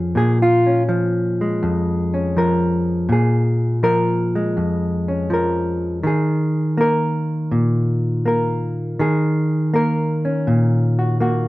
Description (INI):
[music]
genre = solo jazz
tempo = 81 BPM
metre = 4/4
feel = swing 69% on 8ths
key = Bb minor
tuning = A4 = 440 Hz
[part]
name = hollow-body jazz guitar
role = solo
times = 0.0-11.5 s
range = F2 to Bb4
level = -16 LUFS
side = equal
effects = none
[sound]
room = moderate studio reverb, RT60 0.5 s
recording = none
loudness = -16 LUFS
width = side -18 dB against mid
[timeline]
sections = 0.0-11.5 A section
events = hollow-body jazz guitar solo 0.0-11.5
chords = 0.0 Bbm7; 6.0 Eb7(no3)